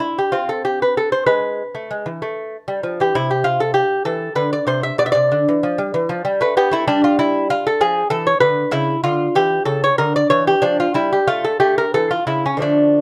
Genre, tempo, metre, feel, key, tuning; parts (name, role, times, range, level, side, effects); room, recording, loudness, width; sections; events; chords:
classical, baroque-style dance for lute; 64 BPM (dotted quarters); 6/8; rubato; A minor; A4 = 440 Hz
lute; solo; 0.0-13.0 s; B2 to E5; -18 LUFS; equal
light reverb; dark, warm production; -18 LUFS; mono
0.0-13.0 A section
0.0 Am; 1.3 E/G#; 2.2 A5; 3.1 C; 5.0 G7/B; 5.9 Em7; 6.9 N.C.; 7.8 Dm69; 8.7 C#dim; 10.6 Fmaj13; 11.6 A